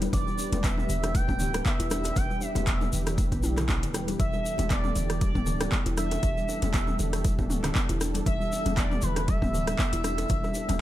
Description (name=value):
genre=afro house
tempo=118 BPM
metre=4/4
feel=swing 55% on 16ths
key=E minor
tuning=A4 = 437 Hz
part: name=warm analog pad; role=sustained chords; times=0.0-10.8 s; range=E3 to B4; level=-38 LUFS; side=right 2 dB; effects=chorus, sidechain pumping
part: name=warm 808-style bass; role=bass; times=0.0-10.8 s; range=D1 to B1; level=-31 LUFS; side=equal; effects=sidechain pumping
part: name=deep house drum kit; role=drums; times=0.0-10.8 s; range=handclaps, hi-hat, rim click, toms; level=-33 LUFS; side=equal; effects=overdrive, studio reverb
part: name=congas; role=percussion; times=0.0-10.8 s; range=none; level=-36 LUFS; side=left 4 dB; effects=none
part: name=tube shaker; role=percussion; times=0.0-10.8 s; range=none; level=-41 LUFS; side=left 4 dB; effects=none
part: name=expressive synth lead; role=melody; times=0.1-10.8 s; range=B4 to G5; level=-34 LUFS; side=right 1 dB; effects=wide subtle chorus, cassette tape, tape echo
part: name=kalimba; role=arpeggios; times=0.1-10.5 s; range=B2 to E4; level=-34 LUFS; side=equal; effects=sidechain pumping, tape echo
part: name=electronic kick drum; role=drums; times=0.1-10.4 s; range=none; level=-28 LUFS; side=equal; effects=overdrive, studio reverb
part: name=bongos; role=percussion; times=0.1-10.8 s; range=none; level=-41 LUFS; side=right 3 dB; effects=none
room=small room ambience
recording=none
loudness=-24 LUFS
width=side -14 dB against mid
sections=0.0-10.8 A section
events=none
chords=0.0 Em7